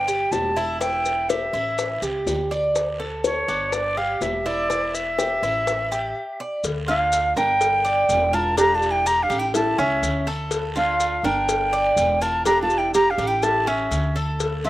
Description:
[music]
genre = latin, Cuban son and guajira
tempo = 124 BPM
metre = 4/4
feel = straight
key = D harmonic minor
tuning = A4 = 443 Hz
[part]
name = breathy jazz flute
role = melody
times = 0.0-14.7 s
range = C#5 to Bb5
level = -21 LUFS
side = equal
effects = none
[part]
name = Cuban tres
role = arpeggios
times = 0.0-14.7 s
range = C#4 to D5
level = -26 LUFS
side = right 1 dB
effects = none
[part]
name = upright bass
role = bass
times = 0.0-14.7 s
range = E1 to D2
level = -30 LUFS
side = equal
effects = none
[part]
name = maracas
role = percussion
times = 0.1-14.7 s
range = none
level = -34 LUFS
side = left 4 dB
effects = none
[part]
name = bongos and cowbell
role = percussion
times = 0.3-14.6 s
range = none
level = -29 LUFS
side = left 5 dB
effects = none
[part]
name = guiro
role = percussion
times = 0.3-14.7 s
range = none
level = -39 LUFS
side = right 2 dB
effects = slapback echo
[part]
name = nylon-string guitar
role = second line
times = 6.9-14.7 s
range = C#4 to G4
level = -26 LUFS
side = right 2 dB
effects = slapback echo
[sound]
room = little or no reverb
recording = recorded outdoors, with no room sound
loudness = -19 LUFS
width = side -15 dB against mid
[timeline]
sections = 0.0-6.6 A section; 6.6-14.7 B section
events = break 6.2-6.6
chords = 0.0 G5; 0.8 Emadd11; 1.8 A7; 2.8 D5; 3.7 G5; 4.7 Emadd11; 5.7 A5; 6.6 Dm; 7.6 Gm; 8.6 Gm13/E; 9.5 A7; 10.5 Dm; 11.5 Gm; 12.5 Gm13/E; 13.4 A7

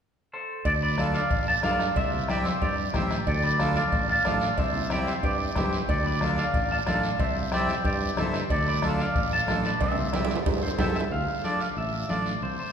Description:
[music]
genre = latin, cumbia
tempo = 184 BPM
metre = 4/4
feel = straight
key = D dorian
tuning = A4 = 440 Hz
[part]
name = clean electric guitar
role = melody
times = 0.3-12.7 s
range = G4 to A5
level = -28 LUFS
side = right 1 dB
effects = spring reverb
[part]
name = fingered electric bass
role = bass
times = 0.7-12.6 s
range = A1 to G2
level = -30 LUFS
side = equal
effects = none
[part]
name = bombo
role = percussion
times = 0.7-10.9 s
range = none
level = -31 LUFS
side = left 1 dB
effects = none
[part]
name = cowbell and timbales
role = percussion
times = 0.7-11.1 s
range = none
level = -35 LUFS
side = right 4 dB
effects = none
[part]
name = guiro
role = percussion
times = 0.7-12.7 s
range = none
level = -40 LUFS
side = right 4 dB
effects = none
[part]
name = accordion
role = accompaniment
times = 1.0-12.3 s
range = C4 to A4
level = -32 LUFS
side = equal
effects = none
[part]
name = congas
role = percussion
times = 1.0-12.3 s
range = none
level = -34 LUFS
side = left 1 dB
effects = none
[sound]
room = wet church reverb, RT60 3.5 s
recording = recorded in a church or concert hall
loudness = -23 LUFS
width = side -7 dB against mid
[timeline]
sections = 0.7-11.1 A section; 11.1-12.7 B section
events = drum fill 9.8-11.1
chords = 0.0 N.C.; 0.7 Dm; 2.0 C; 3.3 Dm; 4.6 C; 5.9 Dm; 7.2 C; 8.5 Dm; 9.8 C; 11.1 Dm

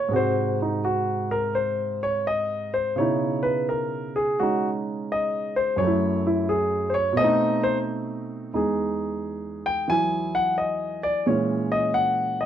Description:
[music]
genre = solo jazz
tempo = 86 BPM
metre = 4/4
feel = swing 67% on 8ths, rubato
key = unclear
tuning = A4 = 440 Hz
[part]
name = warm grand piano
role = solo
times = 0.0-12.5 s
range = E2 to G#5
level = -22 LUFS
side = equal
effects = none
[sound]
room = moderate studio reverb, RT60 0.8 s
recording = dark, warm production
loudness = -22 LUFS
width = side -10 dB against mid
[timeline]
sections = 0.0-12.5 A section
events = grand piano solo 0.0-12.5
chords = 0.1 G#7; 3.0 C#m9; 5.8 F#m7; 7.2 B7b9; 8.5 Emaj9; 11.3 A#m7b5

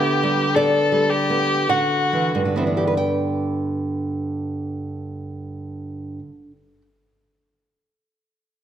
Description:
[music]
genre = romantic duo for violin and classical guitar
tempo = 44-64 BPM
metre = 3/4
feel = rubato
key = G major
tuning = A4 = 437 Hz
[part]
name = rich violin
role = melody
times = 0.0-2.3 s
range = F#4 to A4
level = -20 LUFS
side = left 3 dB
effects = none
[part]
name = nylon-string guitar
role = accompaniment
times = 0.0-6.8 s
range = G2 to G5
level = -21 LUFS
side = right 2 dB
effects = none
[sound]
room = moderate recital hall reverb, RT60 1.4 s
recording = faint mains hum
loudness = -18 LUFS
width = side -10 dB against mid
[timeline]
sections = 0.0-3.0 A section; 3.0-6.5 B section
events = slowing down 0.0-3.0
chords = 0.0 G/D; 1.7 Dadd9; 3.0 G

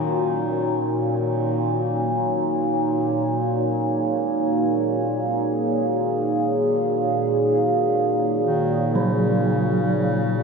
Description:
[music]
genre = dark ambient drone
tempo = free time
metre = none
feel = none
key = Eb minor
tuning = A4 = 440 Hz
[part]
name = mellow bass clarinet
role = melody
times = 0.0-0.4, 8.4-10.4 s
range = Db3 to Eb3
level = -30 LUFS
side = equal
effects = ping-pong delay
[part]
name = dark analog pad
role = sustained chords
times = 0.0-10.4 s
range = Eb4 to Db5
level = -22 LUFS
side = right 1 dB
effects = chorus, phaser
[part]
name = overtone-sweeping drone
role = drone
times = 0.0-10.4 s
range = Bb2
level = -24 LUFS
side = equal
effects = chorus, built-in reverb, phaser
[part]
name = gamelan-type bronze metallophone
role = arpeggios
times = 9.0-10.4 s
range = Gb3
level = -24 LUFS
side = right 3 dB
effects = none
[sound]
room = wet huge ambient reverb, RT60 7.8 s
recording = none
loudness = -19 LUFS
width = side -5 dB against mid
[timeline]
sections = 0.0-10.4 A section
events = none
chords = 0.0 Ebm

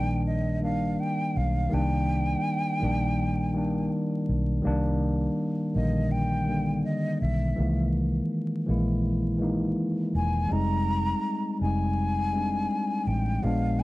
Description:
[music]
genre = lo-fi hip hop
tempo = 82 BPM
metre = 4/4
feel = swing 55% on 16ths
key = unclear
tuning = A4 = 442 Hz
[part]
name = breathy concert flute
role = melody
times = 0.0-13.8 s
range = Eb5 to Bb5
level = -32 LUFS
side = equal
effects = analog delay
[part]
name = mellow tine electric piano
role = accompaniment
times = 0.0-13.8 s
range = D3 to E4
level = -27 LUFS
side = left 1 dB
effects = cassette tape
[part]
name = vintage muted fingered electric bass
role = bass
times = 0.0-13.8 s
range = E1 to C2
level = -28 LUFS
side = equal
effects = none
[sound]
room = moderate small room reverb, RT60 0.5 s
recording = dark, warm production, vinyl crackle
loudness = -24 LUFS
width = side -19 dB against mid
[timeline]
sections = 0.0-4.6 A section; 4.6-13.8 A section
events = none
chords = 0.0 Cm7; 7.6 C7alt; 10.5 Fm9

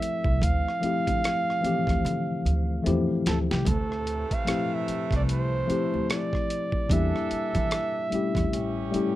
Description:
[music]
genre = R&B, neo-soul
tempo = 74 BPM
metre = 4/4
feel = swing 60% on 16ths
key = D minor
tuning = A4 = 440 Hz
[part]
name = clear flugelhorn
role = melody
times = 0.0-9.2 s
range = G4 to F5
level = -30 LUFS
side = right 3 dB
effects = none
[part]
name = tine electric piano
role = accompaniment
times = 0.0-9.2 s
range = E3 to A4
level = -28 LUFS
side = left 3 dB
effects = none
[part]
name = boom bap sampler-style drum kit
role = drums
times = 0.0-9.2 s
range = hi-hat, kick drum, rim click, snare drum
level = -29 LUFS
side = right 1 dB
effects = none
[part]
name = upright bass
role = bass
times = 0.3-9.0 s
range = A1 to E3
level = -28 LUFS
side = right 1 dB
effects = none
[part]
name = clear horn section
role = stabs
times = 3.7-9.2 s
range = C3 to A4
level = -38 LUFS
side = right 6 dB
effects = none
[sound]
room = little or no reverb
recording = rough home demo mix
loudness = -24 LUFS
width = side -14 dB against mid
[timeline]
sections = 0.0-3.7 A section; 3.7-9.2 A section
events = drum fill 2.0-3.7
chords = 0.0 Dm11; 6.9 Em7b5; 8.5 A7

